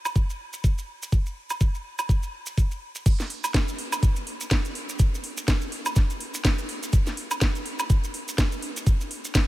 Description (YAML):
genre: house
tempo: 124 BPM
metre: 4/4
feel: swing 57% on 16ths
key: none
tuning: none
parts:
  - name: garage drum kit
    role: drums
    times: 0.1-9.5 s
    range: crash cymbal, hi-hat, snare drum, woodblock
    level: -30 LUFS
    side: right 1 dB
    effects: none
  - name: maracas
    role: percussion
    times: 0.1-9.5 s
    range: none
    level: -37 LUFS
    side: right 2 dB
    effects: none
  - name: electronic kick drum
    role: drums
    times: 0.2-9.5 s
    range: none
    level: -21 LUFS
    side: equal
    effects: none
room: light reverb, digital ambience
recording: none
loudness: -23 LUFS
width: side -17 dB against mid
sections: 0.0-3.1 A section; 3.1-9.5 B section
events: drop 3.1-9.5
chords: none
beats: 0.16 0.64 | 1.12 1.61 2.09 2.58 | 3.06 3.54 4.03 4.51 | 5.00 5.48 5.96 6.45 | 6.93 7.41 7.90 8.38 | 8.87 9.35